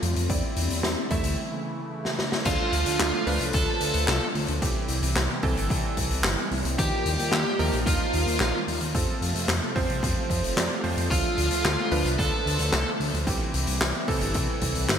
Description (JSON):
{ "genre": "synthwave", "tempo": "111 BPM", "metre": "4/4", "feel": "straight", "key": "D minor", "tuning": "A4 = 439 Hz", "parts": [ { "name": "phased analog pad", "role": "sustained chords", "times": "0.0-15.0 s", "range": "C3 to F4", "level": "-32 LUFS", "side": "equal", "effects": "phaser, chorus, sidechain pumping" }, { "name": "warm electric grand piano", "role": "stabs", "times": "0.0-15.0 s", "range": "E3 to F5", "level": "-33 LUFS", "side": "right 4 dB", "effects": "vintage 12-bit sampler grit, ping-pong delay" }, { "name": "chorused synth bass", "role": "bass", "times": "0.0-15.0 s", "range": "F1 to F2", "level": "-28 LUFS", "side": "equal", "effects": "none" }, { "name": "raw garage drum kit", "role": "drums", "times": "0.0-15.0 s", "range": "crash cymbal, handclaps, hi-hat, snare drum", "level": "-28 LUFS", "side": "left 1 dB", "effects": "none" }, { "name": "electronic kick drum", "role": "drums", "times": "0.3-14.7 s", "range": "none", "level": "-29 LUFS", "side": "equal", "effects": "none" }, { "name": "biting lead guitar", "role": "melody", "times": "2.5-12.9 s", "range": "F4 to A4", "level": "-29 LUFS", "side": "right 2 dB", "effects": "overdrive, ping-pong delay" }, { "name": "string machine, violins", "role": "second line", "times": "2.5-12.9 s", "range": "F4 to A4", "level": "-36 LUFS", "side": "equal", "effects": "none" } ], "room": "moderate lush hall reverb, RT60 1.8 s, small room ambience", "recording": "bright 1980s-style digital production", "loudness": "-23 LUFS", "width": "side -8 dB against mid", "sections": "0.0-2.5 A section; 2.5-15.0 B section", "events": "break 1.4-2.5; drum fill 2.1-2.5", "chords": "0.3 Cadd9/E; 1.4 A; 2.5 Dm; 4.6 C; 6.8 Ebadd9; 8.9 F; 11.1 Dm; 13.3 C" }